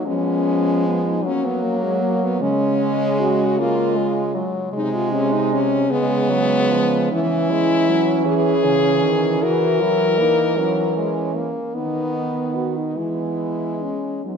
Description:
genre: classical, lyrical piece for horn quartet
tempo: 51 BPM (dotted quarters)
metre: 6/8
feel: rubato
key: unclear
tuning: A4 = 441 Hz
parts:
  - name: warm French horn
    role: melody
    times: 0.0-14.4 s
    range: G#3 to A#4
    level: -21 LUFS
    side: left 4 dB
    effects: none
  - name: warm French horn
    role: second line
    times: 0.0-14.4 s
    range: G#3 to F#4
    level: -24 LUFS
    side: right 10 dB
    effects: none
  - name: clear French horn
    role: accompaniment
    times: 0.0-14.4 s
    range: C#3 to B3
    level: -25 LUFS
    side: left 1 dB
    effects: none
  - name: warm French horn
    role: bass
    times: 0.0-14.4 s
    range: B#2 to F#3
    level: -25 LUFS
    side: right 2 dB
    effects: none
room: wet church reverb, RT60 2.6 s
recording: dark, warm production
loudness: -17 LUFS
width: side -6 dB against mid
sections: 0.0-14.4 A section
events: none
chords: 0.1 C#7/E#; 1.3 F#; 2.4 C#; 4.7 G#/B#; 5.9 C#5; 7.1 C#m/E; 9.4 F#7/E; 11.8 B/D#; 13.0 E6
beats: | 0.07 1.25 | 2.41 3.59 | 4.73 5.89 | 7.12 8.27 | 9.43 10.58 | 11.76 12.98 | 14.25

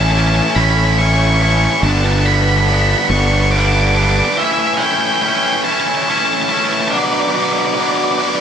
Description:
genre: post-rock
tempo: 47 BPM (dotted quarters)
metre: 6/8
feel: straight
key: A mixolydian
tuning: A4 = 440 Hz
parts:
  - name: octave-fuzz lead guitar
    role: melody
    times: 0.0-8.4 s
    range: D5 to D6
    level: -17 LUFS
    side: equal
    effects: distortion, digital delay
  - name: tight distorted guitar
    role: riff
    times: 0.0-8.4 s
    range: G2 to F#4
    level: -16 LUFS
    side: right 1 dB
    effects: distortion
  - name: fuzz fingered electric bass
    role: bass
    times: 0.0-4.2 s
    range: G1 to A1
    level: -15 LUFS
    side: equal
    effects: overdrive
room: little or no reverb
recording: none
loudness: -12 LUFS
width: side -8 dB against mid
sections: 0.0-8.4 A section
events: none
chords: 0.0 A; 1.8 G; 4.4 A; 6.9 Bm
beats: 0.57 | 1.84 3.11 | 4.38 5.66 | 6.93 8.21

